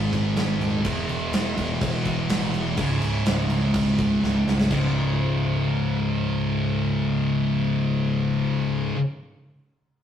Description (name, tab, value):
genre	quiet-loud alternative rock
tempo	125 BPM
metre	4/4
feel	straight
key	C# minor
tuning	A4 = 440 Hz
part	thick fuzz guitar	riff	0.0-9.0 s	C#2 to G#3	-22 LUFS	left 1 dB	distortion
part	growling picked electric bass	bass	0.0-8.9 s	C#1 to A1	-30 LUFS	equal	overdrive
part	big rock drum kit	drums	0.1-4.8 s	crash cymbal, kick drum, snare drum	-27 LUFS	equal	none
room	wet stone room reverb, RT60 1.1 s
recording	rough rehearsal-room recording, tube saturation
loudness	-21 LUFS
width	side -9 dB against mid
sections	0.0-4.7 A section; 4.7-8.6 B section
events	drum fill 4.2-4.7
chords	0.0 G#5; 0.9 E5; 2.8 C#5